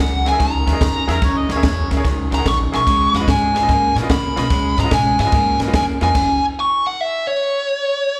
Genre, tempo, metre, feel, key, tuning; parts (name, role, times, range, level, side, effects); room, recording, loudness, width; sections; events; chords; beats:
electric blues shuffle; 146 BPM; 4/4; swing 67% on 8ths; F# major; A4 = 440 Hz
dark smooth lead guitar; melody; 0.0-8.2 s; C#5 to C#6; -20 LUFS; equal; overdrive, slapback echo
electric guitar through a small old amp; riff; 0.0-6.4 s; F#2 to A#3; -25 LUFS; equal; slapback echo
upright bass; bass; 0.0-6.3 s; F#1 to C#3; -24 LUFS; equal
bright upright piano; accompaniment; 0.3-6.1 s; E#4 to F#5; -30 LUFS; equal; slapback echo
compact cocktail drum kit; drums; 0.3-6.3 s; crash cymbal, kick drum, ride cymbal, snare drum; -23 LUFS; equal
mellow harmonica; second line; 1.1-1.9 s; A#4 to D#5; -28 LUFS; equal; slapback echo
light reverb, studio ambience; live gig heard through the venue's PA, club reverb; -17 LUFS; mono
0.0-8.2 A section
0.0 F#9; 2.9 C#9; 6.1 F#5
0.40 0.81 | 1.22 1.63 2.04 2.45 | 2.86 3.27 3.69 4.09 | 4.51 4.92 5.33 5.74 | 6.15 6.56 6.97 7.38 | 7.79